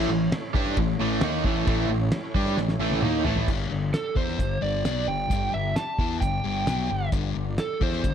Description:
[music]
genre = classic rock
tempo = 132 BPM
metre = 4/4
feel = straight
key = A major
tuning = A4 = 442 Hz
[part]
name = tonewheel organ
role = sustained chords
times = 0.0-8.1 s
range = G3 to D5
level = -39 LUFS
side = right 1 dB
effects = slow rotary speaker, overdrive, chorus vibrato
[part]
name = cranked stack guitar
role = riff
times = 0.0-3.5 s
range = A2 to G4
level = -29 LUFS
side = right 12 dB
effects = overdrive, tremolo
[part]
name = overdriven semi-hollow guitar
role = riff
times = 0.0-3.5 s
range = A2 to G4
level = -30 LUFS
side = equal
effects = phaser
[part]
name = sludgy distorted guitar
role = riff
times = 0.0-8.1 s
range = G2 to G4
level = -29 LUFS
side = left 9 dB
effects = overdrive
[part]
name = fuzz fingered electric bass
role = bass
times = 0.0-8.1 s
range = G1 to G2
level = -30 LUFS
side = equal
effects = overdrive
[part]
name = cloth-damped thuddy drum kit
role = drums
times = 0.3-8.1 s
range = crash cymbal, hi-hat, kick drum, ride cymbal, snare drum, toms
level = -28 LUFS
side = equal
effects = none
[part]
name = overdriven slide guitar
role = melody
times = 3.9-8.1 s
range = A4 to A5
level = -29 LUFS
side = right 4 dB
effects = none
[sound]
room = light reverb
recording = none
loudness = -23 LUFS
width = side -8 dB against mid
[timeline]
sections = 0.0-3.5 A section; 3.5-8.1 B section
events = drum fill 2.6-3.5; electric slide guitar solo 3.5-8.1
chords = 0.0 A; 3.5 G5

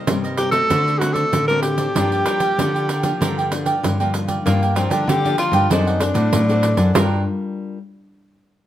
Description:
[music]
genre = samba and choro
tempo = 96 BPM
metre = 4/4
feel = straight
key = G minor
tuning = A4 = 441 Hz
[part]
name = cavaquinho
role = accompaniment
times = 0.0-7.2 s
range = D4 to G5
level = -25 LUFS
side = right 4 dB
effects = none
[part]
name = nylon-string guitar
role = accompaniment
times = 0.0-7.8 s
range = G2 to Bb4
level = -26 LUFS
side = left 4 dB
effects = none
[part]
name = nylon-string guitar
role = bass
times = 0.1-7.2 s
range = F#2 to D3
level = -21 LUFS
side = equal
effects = none
[part]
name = pandeiro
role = percussion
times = 0.1-7.1 s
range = none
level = -23 LUFS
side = right 3 dB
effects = none
[part]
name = bright alto saxophone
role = melody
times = 0.4-3.8 s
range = F#4 to Bb4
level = -20 LUFS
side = equal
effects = none
[part]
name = warm tenor saxophone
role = second line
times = 4.5-7.3 s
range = Bb3 to G4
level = -22 LUFS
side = left 2 dB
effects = none
[sound]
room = moderate studio reverb, RT60 0.8 s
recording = none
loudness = -16 LUFS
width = side -12 dB against mid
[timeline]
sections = 0.0-4.5 A section; 4.5-7.0 B section; 7.0-8.7 C section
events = none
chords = 0.0 Cm7; 0.7 D7; 2.0 Gm7; 5.7 D7/F#; 7.0 Gm7

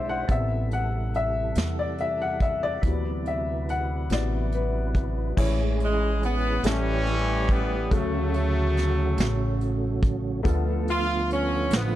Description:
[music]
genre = slow gospel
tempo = 47 BPM (dotted quarters)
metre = 6/8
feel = straight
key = A major from 5.4 s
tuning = A4 = 440 Hz
[part]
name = warm upright piano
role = accompaniment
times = 0.0-12.0 s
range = A2 to F#5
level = -30 LUFS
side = left 4 dB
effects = none
[part]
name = percussive tonewheel organ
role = sustained chords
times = 0.0-12.0 s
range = C3 to C5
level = -32 LUFS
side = right 5 dB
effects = fast rotary speaker, chorus vibrato
[part]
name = upright bass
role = bass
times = 0.0-12.0 s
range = A1 to E2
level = -27 LUFS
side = equal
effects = none
[part]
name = vintage brush drum kit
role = drums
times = 0.3-11.9 s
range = crash cymbal, hi-hat, kick drum, snare drum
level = -26 LUFS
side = equal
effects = none
[part]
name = warm horn section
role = melody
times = 5.8-12.0 s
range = C#3 to F4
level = -27 LUFS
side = equal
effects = none
[sound]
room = little or no reverb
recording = dark, warm production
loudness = -23 LUFS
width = side -13 dB against mid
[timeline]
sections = 0.0-5.4 A section; 5.4-12.0 B section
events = upright piano solo 0.0-5.4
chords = 0.3 Am7; 2.8 D13; 5.4 Amaj7; 6.6 A7; 7.9 Dmaj7; 10.4 Dm6

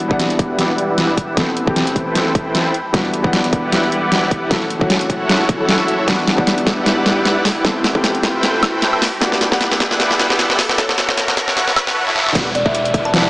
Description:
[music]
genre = future bass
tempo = 153 BPM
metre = 4/4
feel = swing 55% on 16ths, half-time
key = E minor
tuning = A4 = 440 Hz
[part]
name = felt-muted upright piano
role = accompaniment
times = 0.0-12.4 s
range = E3 to F#5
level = -22 LUFS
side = left 1 dB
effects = sidechain pumping, digital delay
[part]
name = shimmering ambient pad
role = sustained chords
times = 0.8-11.9 s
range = G3 to E6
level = -28 LUFS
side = equal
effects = none
[part]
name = saturated sub bass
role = bass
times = 0.0-13.3 s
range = E1 to A1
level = -32 LUFS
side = equal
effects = none
[part]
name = dubstep drum kit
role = drums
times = 0.0-13.2 s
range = crash cymbal, hi-hat, snare drum, woodblock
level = -17 LUFS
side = equal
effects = overdrive
[part]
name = riser and downlifter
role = sound effects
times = 2.8-13.3 s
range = none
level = -27 LUFS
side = equal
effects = none
[part]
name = dense compressed supersaw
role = riff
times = 0.1-13.3 s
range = E4 to G5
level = -20 LUFS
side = equal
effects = sidechain pumping, low-pass filter, digital delay
[part]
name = electronic kick drum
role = drums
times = 0.1-13.0 s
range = none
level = -20 LUFS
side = equal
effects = overdrive
[part]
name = kalimba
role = melody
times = 12.6-13.2 s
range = D5 to A5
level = -18 LUFS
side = equal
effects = sidechain pumping
[sound]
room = moderate huge ambient reverb, RT60 4.8 s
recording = high-pass filter, small speaker sound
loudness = -14 LUFS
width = side -21 dB against mid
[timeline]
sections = 0.0-12.4 A section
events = build-up 0.0-12.4; drum fill 0.0-12.0, 12.1; filter sweep on supersaw synth 0.0-12.4; filter sweep 0.0-12.4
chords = 0.0 Em9; 1.4 Am9; 2.7 Em9; 4.5 F#m7; 6.1 Em9; 7.6 Am9; 9.0 Em9; 10.8 F#m7; 12.4 Em9

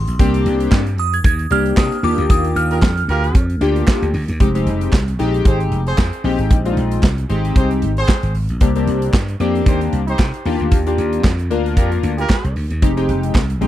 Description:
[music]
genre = early-eighties boogie funk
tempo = 114 BPM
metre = 4/4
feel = swing 56% on 16ths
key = F dorian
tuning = A4 = 442 Hz
[part]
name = glassy synth bell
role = melody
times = 0.0-3.3 s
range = D6 to Ab6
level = -22 LUFS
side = right 2 dB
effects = chorus, phaser, slapback echo
[part]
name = slap bass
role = bass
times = 0.0-13.7 s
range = F1 to C3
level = -19 LUFS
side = equal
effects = none
[part]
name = modern studio drum kit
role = drums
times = 0.1-13.7 s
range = handclaps, hi-hat, kick drum, snare drum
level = -14 LUFS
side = equal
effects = none
[part]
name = chorused polysynth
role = accompaniment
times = 0.2-13.7 s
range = Ab3 to Bb4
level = -19 LUFS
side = left 3 dB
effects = none
[part]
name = group handclap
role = percussion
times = 0.7-13.5 s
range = none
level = -32 LUFS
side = right 5 dB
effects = none
[part]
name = warm horn section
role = second line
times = 2.7-12.5 s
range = C4 to C5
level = -23 LUFS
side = right 2 dB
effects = none
[sound]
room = little or no reverb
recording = dry, close 1970s-style studio recording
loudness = -14 LUFS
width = side -13 dB against mid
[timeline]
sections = 0.0-4.4 A section; 4.4-13.7 B section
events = band accent 2.3-4.4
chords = 0.2 Cm9; 2.0 Ebmaj9; 4.4 Fm9; 6.2 Bb13sus4; 8.6 Cm11; 12.8 Fm9

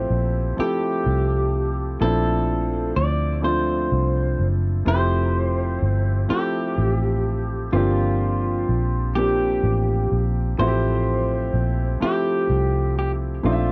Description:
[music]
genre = slow six-eight R&B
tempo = 42 BPM (dotted quarters)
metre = 6/8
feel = straight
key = F major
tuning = A4 = 440 Hz
[part]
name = electric guitar at the edge of break-up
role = melody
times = 0.0-13.7 s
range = F4 to D5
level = -28 LUFS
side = equal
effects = subtle chorus, tape echo
[part]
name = clear baby grand piano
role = accompaniment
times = 0.0-13.7 s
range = F3 to E5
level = -27 LUFS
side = equal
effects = none
[part]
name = vintage muted fingered electric bass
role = bass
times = 0.0-13.7 s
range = F1 to D2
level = -24 LUFS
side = equal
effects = none
[sound]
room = light reverb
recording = dry, close 1970s-style studio recording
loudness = -22 LUFS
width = mono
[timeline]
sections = 0.0-13.7 A section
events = none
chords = 0.0 Fmaj9; 2.0 Bbmaj9#11; 4.9 Fmaj9; 7.7 C7sus4/G; 10.6 Fmaj9/A

